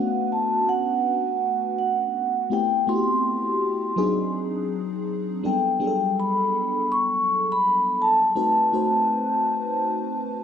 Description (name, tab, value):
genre	R&B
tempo	82 BPM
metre	4/4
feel	swing 63% on 16ths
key	unclear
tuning	A4 = 440 Hz
part	vibraphone with soft mallets	melody	0.0-10.2 s	F#5 to C#6	-22 LUFS	equal	none
part	FM electric piano with soft pad layer	accompaniment	0.0-10.4 s	F#3 to C5	-26 LUFS	left 1 dB	chorus, phaser
room	moderate echo chamber reverb, RT60 2.6 s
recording	dark, warm production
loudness	-20 LUFS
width	side -8 dB against mid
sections	0.0-10.4 A section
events	none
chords	0.0 Bm9; 2.5 Am9; 4.0 G#7#11; 5.4 Gmaj7; 8.4 B7b9